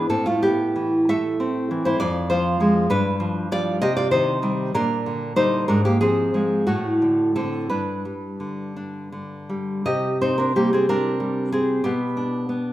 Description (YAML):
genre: romantic piece for solo classical guitar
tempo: 54-67 BPM (dotted quarters)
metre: 6/8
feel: rubato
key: C minor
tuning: A4 = 439 Hz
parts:
  - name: nylon-string guitar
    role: solo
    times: 0.0-12.7 s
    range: F2 to E5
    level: -20 LUFS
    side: equal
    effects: none
room: moderate recital hall reverb, RT60 1.6 s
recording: minimal, uncompressed stereo recording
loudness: -19 LUFS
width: side -14 dB against mid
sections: 0.0-9.8 A section; 9.8-12.7 B section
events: none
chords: 0.1 Am; 2.0 Fm; 2.9 G7; 3.8 Cm; 4.8 Gm/Bb; 5.7 Fm/Ab; 6.7 D7/A; 7.7 G; 9.8 Cm; 11.8 G/B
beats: | 0.10 1.09 | 2.00 2.91 | 3.82 4.76 | 5.70 6.68 | 7.71 8.77 | 9.85 10.88 | 11.85